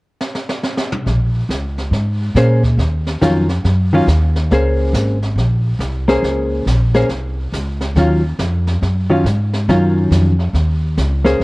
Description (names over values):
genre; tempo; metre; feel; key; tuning
jazz, small-group swing and bop; 139 BPM; 4/4; swing 65% on 8ths; unclear; A4 = 440 Hz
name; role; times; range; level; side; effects
jazz brush drum kit; drums; 0.2-11.4 s; brushed snare drum, hi-hat, kick drum, snare drum, toms; -25 LUFS; right 1 dB; none
upright bass; bass; 1.1-11.4 s; Ab1 to Bb2; -15 LUFS; equal; none
hollow-body jazz guitar; accompaniment; 2.4-11.4 s; Eb3 to C5; -15 LUFS; left 1 dB; cassette tape
room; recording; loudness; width
light reverb; home recording on cassette; -14 LUFS; side -23 dB against mid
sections
0.0-1.1 A section; 1.1-11.4 B section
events
drum fill 0.2-1.1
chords
0.0 N.C.; 1.1 Bbm9; 2.8 Ebm9; 4.5 Bbm9; 8.0 Ebm9